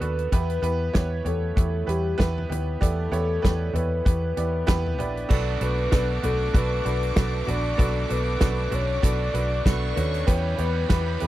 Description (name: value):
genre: piano-driven pop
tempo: 96 BPM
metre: 4/4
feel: swing 56% on 16ths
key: unclear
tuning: A4 = 440 Hz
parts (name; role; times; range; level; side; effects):
- soft octave-layered synth lead; melody; 0.0-11.3 s; G4 to D5; -29 LUFS; left 2 dB; chorus, phaser
- bright upright piano; accompaniment; 0.0-11.3 s; B2 to D5; -31 LUFS; right 6 dB; none
- vintage muted fingered electric bass; bass; 0.0-11.3 s; A#1 to E2; -26 LUFS; equal; none
- natural country drum kit; drums; 0.0-11.3 s; crash cymbal, hi-hat, kick drum, snare drum, toms; -23 LUFS; equal; none
- dark studio violin section; second line; 5.3-11.3 s; D4 to D6; -35 LUFS; left 3 dB; none
- overdriven electric guitar; riff; 5.3-11.3 s; E2 to G4; -34 LUFS; right 6 dB; none
room: little or no reverb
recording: dry, close 1970s-style studio recording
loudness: -22 LUFS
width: side -15 dB against mid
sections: 0.0-5.3 A section; 5.3-11.3 B section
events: none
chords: 0.3 Em; 5.3 Bm7; 10.3 Em